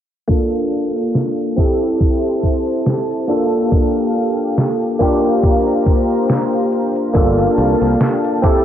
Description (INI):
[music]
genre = vaporwave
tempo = 70 BPM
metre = 4/4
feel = swing 55% on 16ths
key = G dorian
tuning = A4 = 440 Hz
[part]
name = overdriven tine electric piano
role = accompaniment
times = 0.3-8.6 s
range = Bb3 to A4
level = -16 LUFS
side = equal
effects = analog chorus, analog delay
[part]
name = lush unison pad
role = sustained chords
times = 0.3-8.6 s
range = Bb3 to Bb5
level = -23 LUFS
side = left 1 dB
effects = chorus
[part]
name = detuned 8-bit digital drum machine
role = drums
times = 0.3-8.6 s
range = hi-hat, snare drum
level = -18 LUFS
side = equal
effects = none
[part]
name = electronic kick drum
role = drums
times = 0.3-8.6 s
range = none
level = -16 LUFS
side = equal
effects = none
[part]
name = modern bright fingered electric bass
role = bass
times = 7.2-7.9 s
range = G1 to C2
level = -18 LUFS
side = equal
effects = none
[sound]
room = light reverb, digital ambience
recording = dry, gritty hardware recording, transformer saturation, cassette tape, low-pass filter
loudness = -14 LUFS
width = side -10 dB against mid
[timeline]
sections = 0.3-8.6 A section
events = filter sweep 0.3-8.6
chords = 0.3 Gm9; 1.6 Am7; 3.3 Gm9; 5.0 C7sus4; 7.2 Gm9